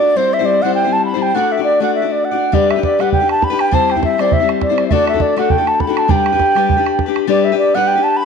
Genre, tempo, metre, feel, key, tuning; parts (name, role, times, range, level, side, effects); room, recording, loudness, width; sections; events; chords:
celtic folk, Celtic reel; 202 BPM; 4/4; swing 57% on 8ths; G major; A4 = 440 Hz
mellow baroque flute; melody; 0.0-8.2 s; C5 to B5; -14 LUFS; right 2 dB
fingerpicked steel-string acoustic guitar; accompaniment; 0.0-8.2 s; G3 to D5; -17 LUFS; left 13 dB
bodhran; percussion; 2.5-7.2 s; -19 LUFS; right 6 dB
wet spring reverb, RT60 2.0 s; 1960s-style stereo with parts hard left and right; -12 LUFS; side -6 dB against mid
0.0-7.3 A section
0.2 C; 1.4 D; 2.5 G; 3.7 C; 4.9 D; 6.1 G